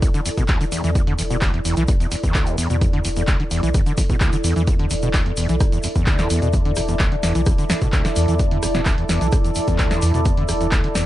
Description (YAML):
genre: acid house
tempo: 129 BPM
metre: 4/4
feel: straight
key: unclear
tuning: A4 = 441 Hz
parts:
  - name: overdriven acid bass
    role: riff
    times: 0.0-11.1 s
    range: D2 to E3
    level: -23 LUFS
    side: equal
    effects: distortion, analog chorus, tape echo
  - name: warm sub bass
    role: bass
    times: 0.0-11.0 s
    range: E1 to E2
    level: -24 LUFS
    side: equal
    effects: sidechain pumping
  - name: electronic kick drum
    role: drums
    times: 0.0-10.8 s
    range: none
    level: -19 LUFS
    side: equal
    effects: none
  - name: punchy analog drum machine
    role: drums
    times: 0.0-11.0 s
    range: handclaps, hi-hat, rim click, snare drum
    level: -26 LUFS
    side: equal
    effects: none
  - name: tube shaker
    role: percussion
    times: 0.0-11.0 s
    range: none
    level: -33 LUFS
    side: left 3 dB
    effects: none
  - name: deep dark ambient pad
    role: texture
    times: 0.0-11.1 s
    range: E4 to D5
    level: -26 LUFS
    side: right 1 dB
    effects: chorus, built-in reverb, sidechain pumping
room: little or no reverb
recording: nothing above 10.8 kHz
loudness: -17 LUFS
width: side -14 dB against mid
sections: 0.0-11.1 A section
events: none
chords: 0.0 E7(no3)